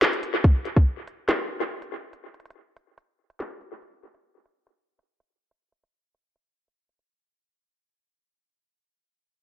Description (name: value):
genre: hip hop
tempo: 142 BPM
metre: 4/4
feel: half-time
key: none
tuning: none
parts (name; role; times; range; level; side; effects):
- drill drum kit; drums; 0.0-7.1 s; handclaps, hi-hat, kick drum, snare drum; -21 LUFS; equal; tape echo
room: light reverb, digital ambience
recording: echo-heavy mix, low-pass filter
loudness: -21 LUFS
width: side -13 dB against mid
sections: 0.0-7.2 A section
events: break 0.0-0.4; fade-out 0.0-7.2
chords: none